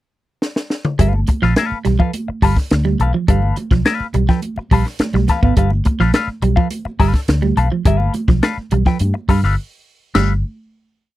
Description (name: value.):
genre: funk.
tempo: 105 BPM.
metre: 4/4.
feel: straight.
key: G mixolydian.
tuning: A4 = 440 Hz.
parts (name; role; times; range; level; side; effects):
compact cocktail drum kit; drums; 0.4-10.3 s; crash cymbal, hi-hat, kick drum, snare drum, toms; -16 LUFS; equal; none.
semi-hollow electric guitar; accompaniment; 1.0-10.3 s; A4 to G5; -21 LUFS; left 7 dB; wah.
clean electric guitar; riff; 1.0-10.3 s; F3 to B3; -20 LUFS; right 7 dB; none.
vintage muted fingered electric bass; bass; 1.0-10.4 s; G1 to G2; -17 LUFS; equal; none.
congas; percussion; 1.0-10.4 s; none; -27 LUFS; right 3 dB; none.
room: little or no reverb.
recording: dry, close 1970s-style studio recording.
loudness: -14 LUFS.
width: side -15 dB against mid.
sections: 0.0-1.0 pickup bar; 1.0-10.1 groove; 10.1-11.2 final chord.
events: drum fill 0.4-1.0; break 9.6-10.1.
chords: 0.0 N.C.; 1.0 G9.